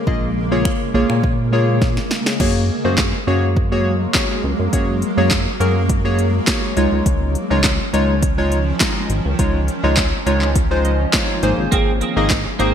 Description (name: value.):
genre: dance-pop.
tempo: 103 BPM.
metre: 4/4.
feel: straight.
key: unclear.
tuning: A4 = 440 Hz.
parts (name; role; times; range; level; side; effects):
shimmering ambient pad; sustained chords; 0.0-12.7 s; C3 to Db4; -24 LUFS; equal; chorus, built-in reverb, sidechain pumping.
warm analog keys; accompaniment; 0.1-12.7 s; Ab3 to Ab5; -20 LUFS; left 1 dB; chorus, sidechain pumping.
chorused synth bass; bass; 0.1-12.7 s; Ab1 to Bb2; -19 LUFS; equal; sidechain pumping.
deep house drum kit; drums; 0.1-12.7 s; crash cymbal, finger snaps, handclaps, hi-hat, kick drum, snare drum; -19 LUFS; equal; overdrive, gated reverb.
twelve-string electric guitar; riff; 11.7-12.7 s; Bb3 to Ab4; -20 LUFS; right 5 dB; analog chorus.
room: moderate lush hall reverb, RT60 2.0 s.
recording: bright 1980s-style digital production.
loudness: -15 LUFS.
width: side -8 dB against mid.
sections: 0.0-2.4 A section; 2.4-12.7 B section.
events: drum fill 1.8-2.4; synth keys fill 10.6-11.7.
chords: 0.0 Bbm7; 2.4 Gbadd9; 6.8 Dbadd9; 11.4 Abadd9.